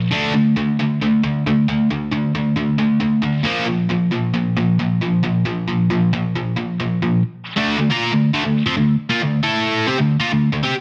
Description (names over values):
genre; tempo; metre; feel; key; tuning
rock; 135 BPM; 4/4; straight; D minor; A4 = 440 Hz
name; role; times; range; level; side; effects
distorted electric guitar; solo; 0.0-10.7 s; Bb2 to Bb4; -18 LUFS; equal; distortion
room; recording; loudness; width
wet studio reverb, RT60 0.9 s; dense, heavily limited modern master; -18 LUFS; mono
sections
0.0-7.2 A section; 7.2-10.8 B section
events
none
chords
0.1 D5; 3.5 Bb5; 7.2 Dm; 9.4 A5; 9.9 D5